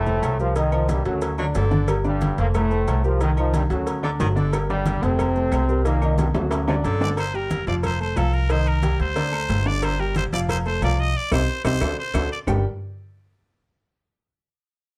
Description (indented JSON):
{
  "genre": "latin, salsa",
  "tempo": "181 BPM",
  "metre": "4/4",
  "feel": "straight",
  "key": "G minor",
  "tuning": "A4 = 438 Hz",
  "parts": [
    { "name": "bright trombone section", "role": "melody", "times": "0.0-7.0 s", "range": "F#2 to F4", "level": "-28 LUFS", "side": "equal", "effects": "plate reverb" },
    { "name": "upright bass", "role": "bass", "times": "0.0-12.6 s", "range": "F1 to D2", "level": "-26 LUFS", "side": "equal", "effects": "none" },
    { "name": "clear concert grand piano", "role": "accompaniment", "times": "0.1-12.6 s", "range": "D3 to A5", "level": "-28 LUFS", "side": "equal", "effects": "none" },
    { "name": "congas", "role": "percussion", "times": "0.1-12.6 s", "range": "none", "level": "-33 LUFS", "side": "equal", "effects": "none" },
    { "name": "maracas", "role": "percussion", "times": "0.1-12.6 s", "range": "none", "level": "-50 LUFS", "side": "equal", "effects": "none" },
    { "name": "claves", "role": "percussion", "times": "0.2-12.6 s", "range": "none", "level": "-44 LUFS", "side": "equal", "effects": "none" },
    { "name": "cowbell and bongos", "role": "percussion", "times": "0.2-12.6 s", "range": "none", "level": "-34 LUFS", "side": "equal", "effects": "none" },
    { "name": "timbales and agogo bells", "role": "percussion", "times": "0.2-12.6 s", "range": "none", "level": "-35 LUFS", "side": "equal", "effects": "none" },
    { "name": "breathy baritone saxophone", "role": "second line", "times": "1.4-1.9, 4.0-4.6, 6.7-7.2 s", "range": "C3 to F#3", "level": "-30 LUFS", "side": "equal", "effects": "none" },
    { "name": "trumpet with straight mute", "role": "melody", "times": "7.0-12.4 s", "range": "A4 to Eb5", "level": "-30 LUFS", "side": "equal", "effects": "plate reverb" }
  ],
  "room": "moderate studio reverb, RT60 0.6 s",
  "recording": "none",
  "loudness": "-22 LUFS",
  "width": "mono",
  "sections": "0.0-7.2 A section; 7.2-12.5 B section; 12.5-13.8 C section",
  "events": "drum fill 6.2-7.2, 11.2-12.5; band accent 11.2-12.5",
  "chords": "0.0 F; 0.6 Cm; 1.2 D; 1.9 Gm; 2.5 F; 3.2 Cm; 3.9 D; 4.5 Gm; 5.2 F; 5.9 Cm7; 6.5 D; 7.2 Gm; 7.8 F; 8.5 Cm7; 9.2 D5; 9.8 G5; 10.5 F; 11.2 Cm; 11.8 D7; 12.5 G5"
}